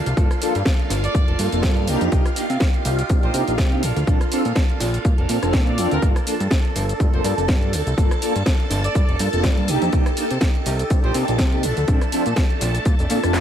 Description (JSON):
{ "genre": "filtered disco house", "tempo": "123 BPM", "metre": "4/4", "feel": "swing 56% on 16ths", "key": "G minor", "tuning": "A4 = 440 Hz", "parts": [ { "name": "phased string machine", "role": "sustained chords", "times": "0.0-13.4 s", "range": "F4 to A5", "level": "-28 LUFS", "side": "equal", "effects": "ensemble chorus, phaser, sidechain pumping" }, { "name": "direct-recorded clean electric guitar", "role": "riff", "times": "0.0-13.4 s", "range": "F3 to A4", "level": "-31 LUFS", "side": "right 7 dB", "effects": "tremolo, sidechain pumping" }, { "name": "fat analog bass", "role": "bass", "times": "0.0-13.4 s", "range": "F1 to C3", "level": "-23 LUFS", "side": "equal", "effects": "sidechain pumping" }, { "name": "house drum kit", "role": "drums", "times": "0.1-13.4 s", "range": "handclaps, hi-hat, rim click, shaker, snare drum", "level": "-27 LUFS", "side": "equal", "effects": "overdrive, sidechain pumping on hats, sidechain pumping on perc, sidechain pumping on cymbals" }, { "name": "mellow synth brass", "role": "accompaniment", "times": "0.2-13.4 s", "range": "Bb3 to A4", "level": "-25 LUFS", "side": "equal", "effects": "chorus, phaser, sidechain pumping" }, { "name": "electronic kick drum", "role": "drums", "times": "0.2-13.0 s", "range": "none", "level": "-18 LUFS", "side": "equal", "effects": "overdrive" }, { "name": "clear trumpet section", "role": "melody", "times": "1.0-11.1 s", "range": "Bb4 to D5", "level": "-30 LUFS", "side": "right 1 dB", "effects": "sidechain pumping, analog delay" } ], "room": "little or no reverb", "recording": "none", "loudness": "-17 LUFS", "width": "side -10 dB against mid", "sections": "0.0-13.4 A section", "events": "none", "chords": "0.0 Gm9; 1.9 Cm7; 3.8 Bbmaj7; 6.0 Gm9; 9.7 Cm7; 11.6 Bbmaj7" }